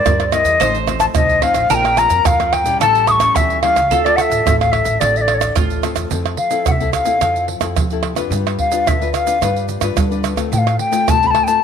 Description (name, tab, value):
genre	samba and choro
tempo	109 BPM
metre	4/4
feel	straight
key	D minor, F major from 6.1 s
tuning	A4 = 440 Hz
part	bright wooden flute	melody	0.0-11.6 s	C#5 to Eb6	-15 LUFS	left 3 dB	none
part	bowl-back mandolin	second line	0.0-6.1 s	F4 to C5	-24 LUFS	right 11 dB	none
part	nylon-string guitar	accompaniment	0.0-11.6 s	A2 to B4	-24 LUFS	left 10 dB	none
part	upright bass	bass	0.0-11.3 s	A1 to G3	-22 LUFS	right 1 dB	none
part	tube shaker, surdo, pandeiro and tamborim	percussion	0.1-11.6 s	none	-19 LUFS	right 6 dB	none
room	light reverb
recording	1960s-style stereo with parts hard left and right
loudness	-13 LUFS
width	side -7 dB against mid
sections	0.0-6.1 A section; 6.1-11.6 B section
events	flute solo 6.1-11.6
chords	0.0 C7/G; 0.6 F7/A; 1.7 Bbsus2; 2.8 A7; 3.9 Dm7; 6.1 Fmaj7; 8.3 G7; 10.5 F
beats	0.06 0.61 1.16 | 1.71 2.26 2.81 3.36 | 3.91 4.46 5.01 5.56 | 6.11 6.67 7.22 7.77 | 8.32 8.87 9.43 9.98 | 10.53 11.09